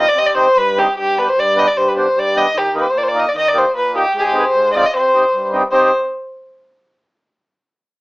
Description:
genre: klezmer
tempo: 152 BPM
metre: 2/4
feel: straight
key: C harmonic minor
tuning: A4 = 441 Hz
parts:
  - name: dark violin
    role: melody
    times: 0.0-5.9 s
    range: G4 to Eb5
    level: -14 LUFS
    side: equal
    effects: none
  - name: mellow accordion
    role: accompaniment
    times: 0.0-5.9 s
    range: G2 to Bb4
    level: -18 LUFS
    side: equal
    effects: none
room: moderate studio reverb, RT60 0.6 s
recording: small speaker sound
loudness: -12 LUFS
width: side -23 dB against mid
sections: 0.0-5.7 A section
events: speeding up 0.0-6.5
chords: 0.0 Cm; 1.0 G; 2.6 Eb; 4.1 Ab; 4.9 Cm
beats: | 0.17 0.57 | 0.97 1.37 | 1.77 2.17 | 2.57 2.96 | 3.36 3.75 | 4.15 4.54 | 4.93 5.33 | 5.72

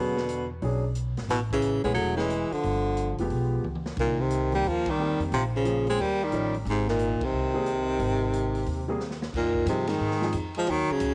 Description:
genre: jazz, small-group swing and bop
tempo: 179 BPM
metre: 4/4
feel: swing 65% on 8ths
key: Ab major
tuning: A4 = 440 Hz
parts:
  - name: clear baritone saxophone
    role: melody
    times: 0.0-11.1 s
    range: Ab2 to Ab3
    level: -29 LUFS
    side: equal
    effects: cassette tape, tape echo
  - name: breathy tenor saxophone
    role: second line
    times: 0.0-11.1 s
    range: C3 to C4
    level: -36 LUFS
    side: equal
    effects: cassette tape
  - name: warm grand piano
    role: accompaniment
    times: 0.0-10.3 s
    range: Eb3 to Bb4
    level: -35 LUFS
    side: equal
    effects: cassette tape
  - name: upright bass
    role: bass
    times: 0.0-11.1 s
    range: E1 to Ab2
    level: -33 LUFS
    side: equal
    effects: none
  - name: swinging big-band drum kit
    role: drums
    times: 0.2-11.1 s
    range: crash cymbal, hi-hat, kick drum, ride cymbal, snare drum, toms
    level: -42 LUFS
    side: equal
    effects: vintage 12-bit sampler grit
room: light reverb, small room ambience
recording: home recording on cassette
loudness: -27 LUFS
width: mono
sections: 0.0-9.3 A section; 9.3-11.1 B section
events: drum fill 3.6-4.0, 9.0-9.3; band accent 4.8, 7.2, 9.8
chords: 0.0 E13; 1.3 Amaj7; 2.6 G7b9; 4.0 Cm7; 5.3 Bbm7; 6.0 Eb9; 6.7 Ab; 9.3 Fm7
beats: 0.29 0.63 0.96 | 1.30 1.63 1.97 2.30 | 2.64 2.98 3.31 3.65 | 3.98 4.32 4.65 4.99 | 5.32 5.66 5.99 6.33 | 6.66 7.00 7.33 7.67 | 8.00 8.33 8.67 9.00 | 9.34 9.67 10.01 10.34 | 10.68 11.01

